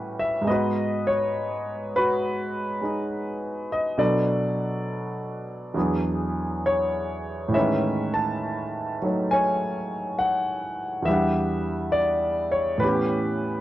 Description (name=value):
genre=jazz ballad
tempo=68 BPM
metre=4/4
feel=swing 68% on 8ths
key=unclear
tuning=A4 = 441 Hz
part: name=warm concert grand piano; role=solo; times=0.0-13.6 s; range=E2 to A5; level=-23 LUFS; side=equal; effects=none
room=light reverb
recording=worn, warbling old tape, cassette tape, warbly pitch drift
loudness=-23 LUFS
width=side -14 dB against mid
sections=0.0-13.6 A section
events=none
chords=0.5 G#m7; 4.0 Bm7; 5.8 E13; 7.5 Amaj9#11; 11.1 Em7; 12.8 A9